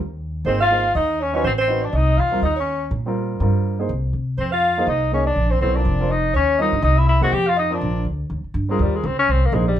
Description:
jazz, small-group swing and bop; 245 BPM; 4/4; swing 57% on 8ths; A4 = 440 Hz
upright bass; bass; 0.0-9.8 s; F1 to C3; -21 LUFS; equal
breathy tenor saxophone; melody; 0.5-9.8 s; G3 to G4; -21 LUFS; left 3 dB
clear alto saxophone; second line; 0.5-8.1 s; C5 to G5; -24 LUFS; right 4 dB
warm upright piano; accompaniment; 0.5-9.7 s; G3 to Eb5; -25 LUFS; right 2 dB
moderate studio reverb, RT60 0.6 s; band playing live in one room; -17 LUFS; side -11 dB against mid
0.0-8.3 A section; 8.3-9.8 B section
tenor saxophone solo 8.3-9.8
0.5 Ab; 1.4 Adim7; 2.4 Eb7; 3.4 Gm7; 3.9 N.C.; 4.4 Fm7; 5.4 Bb; 6.3 Eb7; 6.8 C7alt; 7.3 F5; 7.8 Bb; 8.3 Eb7; 9.3 Ab

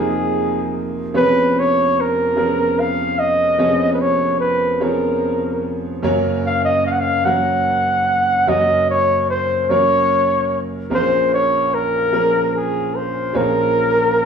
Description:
acoustic folk-pop ballad; 49 BPM (dotted quarters); 6/8; straight; Bb minor; A4 = 440 Hz
breathy flugelhorn; melody; 0.0-14.3 s; Ab4 to Gb5; -16 LUFS; equal; plate reverb
warm concert grand piano; accompaniment; 0.0-14.3 s; F1 to Db5; -20 LUFS; right 1 dB
moderate studio reverb, RT60 0.6 s; studio reverb; -15 LUFS; side -7 dB against mid
0.0-14.3 A section
0.0 F7sus4; 1.2 Db7/F; 6.0 Gb; 10.9 Bbm7

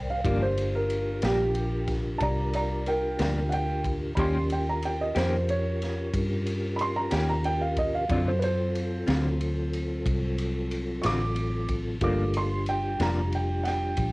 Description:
slow blues; 61 BPM (dotted quarters); 12/8; straight; G minor; A4 = 440 Hz
dark upright piano; accompaniment; 0.0-14.1 s; F#3 to D6; -29 LUFS; right 1 dB; cassette tape
mellow tonewheel organ; sustained chords; 0.0-14.1 s; F#3 to G5; -33 LUFS; left 1 dB; chorus vibrato, stopped rotary speaker, cassette tape
vintage muted fingered electric bass; bass; 0.0-14.1 s; F1 to G2; -29 LUFS; equal
clean electric guitar; accompaniment; 0.2-13.2 s; G2 to G4; -31 LUFS; left 2 dB; tremolo, cassette tape
raw garage drum kit; drums; 0.2-14.1 s; kick drum, ride cymbal, snare drum; -35 LUFS; equal; cassette tape
light reverb; home recording on cassette; -25 LUFS; side -23 dB against mid
0.0-14.1 A section
upright piano solo 0.0-14.1
0.0 Gm7; 4.2 Eb7; 8.1 D7#9; 12.0 Gm7

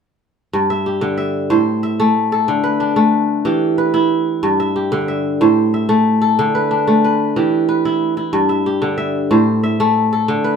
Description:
west african traditional; 123 BPM (dotted quarters); 12/8; straight; G major; A4 = 438 Hz
kora; arpeggios; 0.5-10.6 s; G2 to E5; -14 LUFS; equal
wet studio reverb, RT60 0.7 s; band playing live in one room; -14 LUFS; side -6 dB against mid
0.5-10.6 A section
0.5 G5; 1.5 Am; 2.5 D5; 3.5 Em; 4.4 G5; 5.4 Am; 6.4 D5; 7.4 Em; 8.3 G5; 9.3 Am

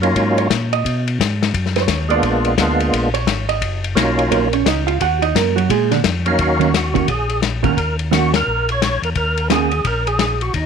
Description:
soul jazz organ trio; 173 BPM; 4/4; swing 62% on 8ths; Eb minor; A4 = 440 Hz
percussive tonewheel organ; melody; 0.0-10.7 s; Gb3 to F5; -18 LUFS; right 1 dB; slow rotary speaker, overdrive, chorus vibrato
mellow tonewheel organ; bass; 0.0-10.7 s; Gb1 to B2; -21 LUFS; left 1 dB; overdrive, chorus vibrato, slow rotary speaker
warm soul drum kit; drums; 0.0-10.6 s; hi-hat, kick drum, ride cymbal, snare drum; -21 LUFS; left 8 dB
hollow-body jazz guitar; accompaniment; 0.4-9.7 s; D3 to Gb5; -19 LUFS; right 14 dB
light reverb, small room reverb; 1960s-style stereo with parts hard left and right; -15 LUFS; side -6 dB against mid
0.0-6.4 A section; 6.4-10.7 B section
hollow-body jazz guitar solo 0.0-6.4; band accent 8.3
0.0 Ebm7; 0.8 B; 2.2 Bb7b9; 3.6 Ebm7; 5.7 Bb7; 6.4 Ebm7

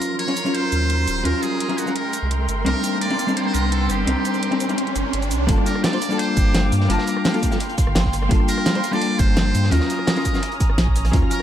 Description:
liquid drum and bass; 170 BPM; 4/4; straight; G minor; A4 = 441 Hz
trumpet with metal mute; melody; 0.0-11.4 s; Gb4 to D5; -27 LUFS; right 1 dB; analog delay
vintage hollow-body jazz guitar; accompaniment; 0.0-11.4 s; Gb3 to A5; -23 LUFS; left 2 dB; analog delay
rich symphonic string section; sustained chords; 0.0-11.4 s; Bb3 to F6; -29 LUFS; right 2 dB
pop drum kit; drums; 0.0-11.4 s; hi-hat, rim click, shaker, snare drum; -26 LUFS; equal; tape echo
riser; sound effects; 0.0-5.5 s; -29 LUFS; right 2 dB
sub bass with octave; bass; 0.7-11.2 s; Eb1 to G2; -21 LUFS; equal
crunchy breakbeat drum kit; drums; 5.5-11.4 s; hi-hat, snare drum; -32 LUFS; equal; high-pass filter on hats, high-pass filter on snare, high-pass filter on room, tape echo
electronic kick drum; drums; 5.5-11.2 s; -20 LUFS; equal
moderate plate reverb, RT60 2.0 s; echo-heavy mix; -18 LUFS; side -10 dB against mid
0.0-5.5 A section; 5.5-11.4 B section
build-up 0.0-5.5; riser 0.0-5.5; drop 5.5-11.4
0.0 Ebm7; 2.0 Cm7; 5.5 Gm7; 9.7 Ebm7

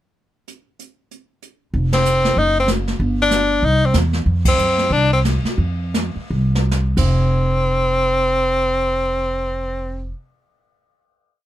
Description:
jazz, small-group swing and bop; 133-190 BPM; 4/4; swing 60% on 8ths; A4 = 440 Hz
jazz brush drum kit; drums; 0.5-7.1 s; brushed snare drum, crash cymbal, hi-hat, kick drum, ride cymbal, snare drum; -23 LUFS; right 1 dB
upright bass; bass; 1.7-10.1 s; F1 to Gb2; -19 LUFS; equal
bright tenor saxophone; melody; 1.9-10.1 s; C4 to Eb4; -17 LUFS; left 1 dB
little or no reverb; -16 LUFS; side -13 dB against mid
0.5-1.7 pickup bar; 1.7-7.2 A section; 7.2-10.8 final hit
band accent 1.9, 4.4; slowing down 4.3-7.2; drum fill 6.3-6.7
0.5 N.C.; 1.7 F5; 2.4 Cdim/Gb (rootless); 3.0 G5; 3.6 C; 4.3 F5

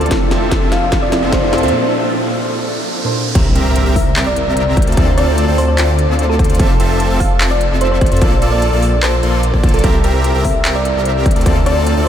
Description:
future bass; 148 BPM; 4/4; half-time; F major; A4 = 442 Hz
soft round pluck; accompaniment; 0.0-3.3 s; Bb2 to F5; -23 LUFS; right 1 dB; wide subtle chorus, sidechain pumping, analog delay
ethereal airy pad; sustained chords; 0.0-12.1 s; F4 to D6; -26 LUFS; equal; ensemble chorus, built-in reverb, tremolo, sidechain pumping
big bright polysynth; riff; 0.0-12.1 s; Bb3 to C6; -19 LUFS; equal; sidechain pumping
wide detuned saw bass; bass; 0.0-12.1 s; F1 to F2; -16 LUFS; equal; chorus, sidechain pumping
trap drum kit; drums; 0.0-11.9 s; crash cymbal, handclaps, hi-hat, snare drum; -23 LUFS; equal
riser and impact; sound effects; 0.6-5.0 s; -25 LUFS; equal
electronic kick drum; drums; 0.1-11.5 s; -15 LUFS; equal
thumb-piano-like synth pluck; melody; 0.7-11.8 s; A4 to F5; -20 LUFS; equal; chorus, sidechain pumping, analog delay
wet cathedral reverb, RT60 6.6 s; dreamy mix soaked in reverb; -12 LUFS; side -10 dB against mid
0.0-3.4 A section; 3.4-12.1 B section
build-up 0.0-3.4; drum fill 0.0-1.7; riser 0.6-3.4; break 1.7-3.4; drop 3.4-12.1; impact 3.4-5.0
0.1 Fmaj7; 1.7 Bbmaj7; 3.4 C7; 4.8 Dm7; 6.6 Fmaj7; 8.2 Bbmaj7; 9.8 C7; 11.3 Dm7

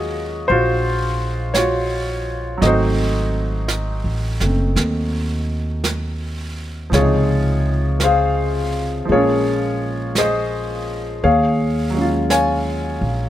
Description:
jazz ballad; 56 BPM; 4/4; swing 67% on 8ths; A4 = 440 Hz
clear concert grand piano; accompaniment; 0.0-13.3 s; C3 to Ab5; -19 LUFS; left 1 dB
upright bass; bass; 0.0-13.3 s; Gb1 to Eb2; -21 LUFS; equal
jazz brush drum kit; drums; 0.5-13.3 s; brushed snare drum, hi-hat, snare drum; -28 LUFS; right 3 dB
little or no reverb; -17 LUFS; side -12 dB against mid
0.0-13.3 A section
0.0 Ebm11; 2.6 Ab7b9; 6.9 Dbmaj9; 9.1 Bbm9; 11.2 Ebm11

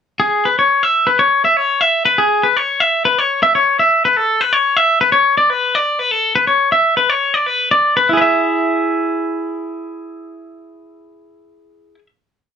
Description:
rock; 122 BPM; 4/4; straight; E mixolydian; A4 = 442 Hz
twangy electric guitar; solo; 0.2-12.1 s; E4 to E5; -12 LUFS; left 1 dB
moderate studio reverb, RT60 0.5 s; -12 LUFS; side -8 dB against mid
0.2-8.1 A section; 8.1-12.0 final chord
0.2 E6; 4.2 Dsus2; 8.1 E

